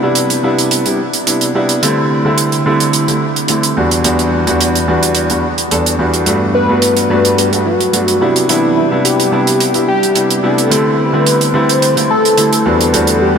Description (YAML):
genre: nu-disco, nu disco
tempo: 108 BPM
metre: 4/4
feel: straight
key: unclear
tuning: A4 = 438 Hz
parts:
  - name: warm grand piano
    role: accompaniment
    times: 0.0-13.4 s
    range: E2 to A4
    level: -13 LUFS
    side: equal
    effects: diffuse ambient delay
  - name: hi-hat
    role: drums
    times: 0.2-13.2 s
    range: none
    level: -18 LUFS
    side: right 4 dB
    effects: none
  - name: wide unison lead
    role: melody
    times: 6.5-13.4 s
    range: E4 to C5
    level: -14 LUFS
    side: left 1 dB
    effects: analog delay
room: wet huge ambient reverb, RT60 8.3 s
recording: dreamy mix soaked in reverb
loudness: -10 LUFS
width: side -6 dB against mid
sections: 0.0-13.4 A section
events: none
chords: 0.0 Cmaj7; 1.8 D7sus4; 3.8 Em7; 6.3 Gmaj7; 8.2 Cmaj7; 10.7 D7sus4; 12.7 Em7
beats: 0.16 0.71 1.27 | 1.82 2.38 2.94 3.49 | 4.05 4.60 5.16 5.71 | 6.27 6.83 7.38 7.94 | 8.49 9.05 9.60 10.16 | 10.71 11.27 11.82 12.38 | 12.94